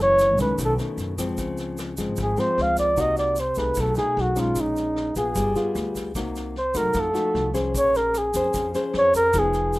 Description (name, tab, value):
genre	bossa nova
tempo	151 BPM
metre	4/4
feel	straight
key	Bb minor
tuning	A4 = 438 Hz
part	breathy flugelhorn	melody	0.0-9.8 s	Eb4 to F5	-21 LUFS	equal	none
part	nylon-string guitar	accompaniment	0.0-9.8 s	Gb2 to C5	-27 LUFS	left 2 dB	none
part	upright bass	bass	0.0-9.8 s	F1 to F#2	-29 LUFS	equal	none
part	vintage brush drum kit	drums	0.0-9.8 s	kick drum, rim click, snare drum	-36 LUFS	equal	none
part	egg shaker	percussion	0.2-9.8 s	none	-38 LUFS	right 3 dB	none
room	little or no reverb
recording	rough home demo mix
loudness	-20 LUFS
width	side -19 dB against mid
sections	0.0-9.8 A section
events	flugelhorn solo 0.0-9.8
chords	0.0 Gbm7; 0.6 B9; 1.4 Dbmaj7; 3.0 Cm7b5; 3.8 B13; 4.6 Bbm7; 5.4 G7b9; 6.2 Cm7b5; 7.0 F7b9; 7.7 Bbm9